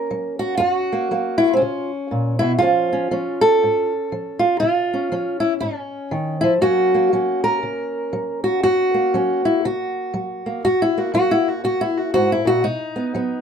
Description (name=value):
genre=acoustic country blues, solo or duo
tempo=120 BPM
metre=4/4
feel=swing 62% on 8ths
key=F# major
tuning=A4 = 441 Hz
part: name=fingerpicked old ladder-braced acoustic guitar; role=solo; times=0.0-13.4 s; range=F#2 to A#4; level=-17 LUFS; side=equal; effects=none
room=light reverb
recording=none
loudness=-17 LUFS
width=side -7 dB against mid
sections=0.0-10.6 A section; 10.6-13.4 B section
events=steel-string acoustic guitar solo 10.6-13.4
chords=0.0 F#; 2.6 C#; 6.6 F#; 12.6 B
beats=0.10 | 0.60 1.10 1.60 2.10 | 2.61 3.11 3.61 4.11 | 4.62 5.12 5.62 6.12 | 6.62 7.12 7.62 8.13 | 8.63 9.13 9.63 10.13 | 10.63 11.13 11.63 12.13 | 12.63 13.13